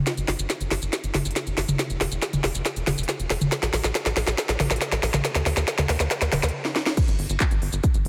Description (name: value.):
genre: uplifting trance.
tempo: 139 BPM.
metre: 4/4.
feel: straight.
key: G minor.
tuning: A4 = 440 Hz.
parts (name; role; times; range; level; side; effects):
tight sequencer bass; bass; 0.0-8.1 s; Eb1 to Eb2; -30 LUFS; equal; sidechain pumping.
techno drum kit; drums; 0.1-8.1 s; crash cymbal, handclaps, hi-hat, shaker, snare drum, toms; -26 LUFS; equal; none.
electronic kick drum; drums; 7.0-7.9 s; none; -24 LUFS; equal; none.
room: moderate lush hall reverb, RT60 2.5 s.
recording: none.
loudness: -24 LUFS.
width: mono.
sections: 0.0-7.0 A section; 7.0-8.1 B section.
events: build-up 0.0-7.0; drum fill 0.0-6.5, 6.7-7.0; stop 6.5-7.0; drop 7.0-8.1.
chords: none.